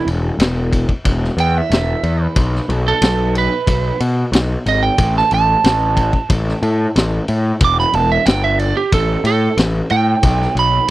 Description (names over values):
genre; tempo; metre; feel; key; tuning
blues rock power trio and southern rock; 91 BPM; 4/4; straight; E minor; A4 = 440 Hz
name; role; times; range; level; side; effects
lightly driven lead guitar; second line; 0.0-10.9 s; G4 to D6; -17 LUFS; right 5 dB; none
fuzz picked electric bass; bass; 0.1-10.8 s; E1 to B2; -17 LUFS; left 1 dB; overdrive
vintage drum kit; drums; 0.1-10.9 s; kick drum, ride cymbal, snare drum; -19 LUFS; left 1 dB; none
room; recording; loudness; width
little or no reverb; dry, close 1970s-style studio recording; -13 LUFS; side -16 dB against mid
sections
0.0-10.9 A section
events
lead electric guitar solo 0.0-10.9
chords
0.0 N.C.; 7.6 Em; 8.9 Gsus2/A; 10.2 B5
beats
0.40 1.05 1.71 | 2.37 3.02 3.68 4.33 | 4.99 5.64 6.30 6.96 | 7.61 8.27 8.93 9.59 | 10.24 10.90